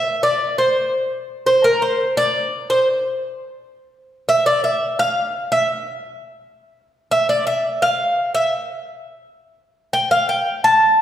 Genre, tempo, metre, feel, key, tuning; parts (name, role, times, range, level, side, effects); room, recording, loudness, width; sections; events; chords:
latin; 170 BPM; 4/4; straight; F major; A4 = 440 Hz
Cuban tres; solo; 0.0-11.0 s; Bb4 to A5; -16 LUFS; equal
wet recital hall reverb, RT60 1.8 s; recorded in a church or concert hall; -16 LUFS; side -10 dB against mid
0.0-11.0 A section
Cuban tres solo 0.0-11.0